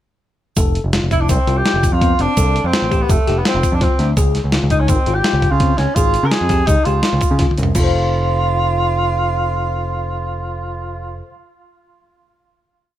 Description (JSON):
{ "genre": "progressive instrumental, band music in an uneven meter", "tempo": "167 BPM", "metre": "5/4", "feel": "straight", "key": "unclear", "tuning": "A4 = 440 Hz", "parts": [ { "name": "bell-like tine electric piano", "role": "arpeggios", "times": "0.6-11.3 s", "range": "B3 to F5", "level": "-24 LUFS", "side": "left 6 dB", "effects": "fast stereo tremolo" }, { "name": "overdriven picked electric bass", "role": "bass", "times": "0.6-11.2 s", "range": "F1 to Db3", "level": "-19 LUFS", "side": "equal", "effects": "none" }, { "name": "dusty soul sampler-style drum kit", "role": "drums", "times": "0.6-7.8 s", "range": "crash cymbal, hi-hat, kick drum, snare drum, toms", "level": "-17 LUFS", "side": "equal", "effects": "none" }, { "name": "tube shaker", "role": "percussion", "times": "0.6-7.9 s", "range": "none", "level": "-32 LUFS", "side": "right 7 dB", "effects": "none" }, { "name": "mellow tenor saxophone", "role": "melody", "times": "1.1-11.2 s", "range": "A3 to Bb4", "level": "-20 LUFS", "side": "right 1 dB", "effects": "tape echo" } ], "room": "light reverb", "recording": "none", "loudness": "-14 LUFS", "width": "side -12 dB against mid", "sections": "0.6-7.8 groove; 7.8-11.3 final chord", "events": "drum fill 7.4-7.8", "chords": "0.6 F; 4.2 Db; 7.8 F" }